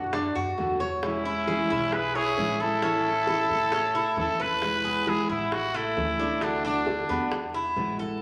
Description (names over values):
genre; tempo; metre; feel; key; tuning
latin, Cuban son and guajira; 134 BPM; 4/4; straight; unclear; A4 = 442 Hz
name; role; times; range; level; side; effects
growling trumpet; melody; 0.0-7.5 s; D4 to B4; -29 LUFS; equal; none
brilliant trumpet; second line; 0.0-4.4 s; C#4 to G#4; -36 LUFS; equal; none
picked steel-string acoustic guitar; accompaniment; 0.0-8.2 s; B2 to F#4; -35 LUFS; equal; none
Cuban tres; arpeggios; 0.0-8.2 s; A3 to C#5; -33 LUFS; equal; none
upright bass; bass; 0.0-8.2 s; A1 to A2; -41 LUFS; equal; none
bongos; percussion; 0.1-8.2 s; none; -39 LUFS; equal; none
room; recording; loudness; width
wet large studio reverb, RT60 1.3 s; vinyl crackle; -27 LUFS; mono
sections
0.0-4.6 A section; 4.6-8.2 B section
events
none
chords
0.0 Bm7; 1.0 E6; 2.8 A; 4.6 E; 5.5 A; 6.4 D; 7.3 E